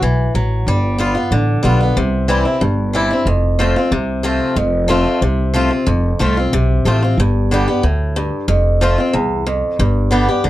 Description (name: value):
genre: bluegrass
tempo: 184 BPM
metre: 4/4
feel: straight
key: unclear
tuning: A4 = 440 Hz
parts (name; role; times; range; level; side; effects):
- picked swing-style acoustic guitar; accompaniment; 0.0-10.5 s; E2 to G4; -16 LUFS; equal; none
- upright bass; bass; 0.0-10.5 s; F1 to D2; -16 LUFS; equal; none
room: light reverb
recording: dark, warm production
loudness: -14 LUFS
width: side -15 dB against mid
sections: 0.0-3.3 A section; 3.3-10.5 B section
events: none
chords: 0.0 D (rootless); 0.7 G7; 2.0 C; 3.3 F; 7.2 G; 8.5 F; 9.8 G